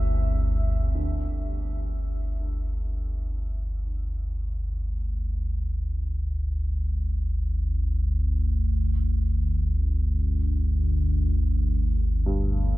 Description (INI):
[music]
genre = dark ambient drone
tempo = free time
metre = none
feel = none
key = unclear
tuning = A4 = 440 Hz
[part]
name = deep dark ambient pad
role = sustained chords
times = 0.0-1.0 s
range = C4 to E5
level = -39 LUFS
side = right 1 dB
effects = chorus, built-in reverb
[part]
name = dark grand piano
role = arpeggios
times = 0.0-12.8 s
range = E2 to A3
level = -38 LUFS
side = right 1 dB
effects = ping-pong delay
[part]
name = deep rumbling drone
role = drone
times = 0.0-12.8 s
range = G1 to D2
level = -24 LUFS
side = equal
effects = built-in reverb, lush chorus
[sound]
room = little or no reverb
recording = none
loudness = -24 LUFS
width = side -18 dB against mid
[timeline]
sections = 1.0-12.8 A section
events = fade-in on grand piano 1.0-12.8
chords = 0.0 G5; 8.7 Em7/G (rootless)